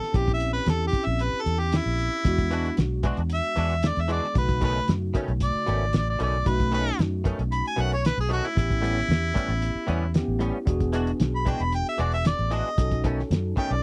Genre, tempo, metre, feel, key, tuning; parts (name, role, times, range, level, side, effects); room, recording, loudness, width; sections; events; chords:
straight-eighth soul blues; 114 BPM; 4/4; straight; A4 = 442 Hz
warm harmonica; melody; 0.0-13.8 s; E4 to B5; -30 LUFS; equal; overdrive
bell-like tine electric piano; accompaniment; 0.0-13.8 s; C#3 to A4; -34 LUFS; equal; phaser
cloth-damped thuddy drum kit; drums; 0.0-13.8 s; hi-hat, kick drum, snare drum; -27 LUFS; equal
vintage muted fingered electric bass; bass; 0.1-13.8 s; E1 to F#2; -29 LUFS; equal
direct-recorded clean electric guitar; stabs; 2.5-13.7 s; A2 to F#4; -33 LUFS; equal; ensemble chorus
little or no reverb; dry, close 1970s-style studio recording; -25 LUFS; mono
0.0-13.8 A section
harmonica solo 0.0-13.8
0.1 A#dim7; 2.2 E9; 4.4 B9; 8.6 A9; 10.7 E9; 12.8 B9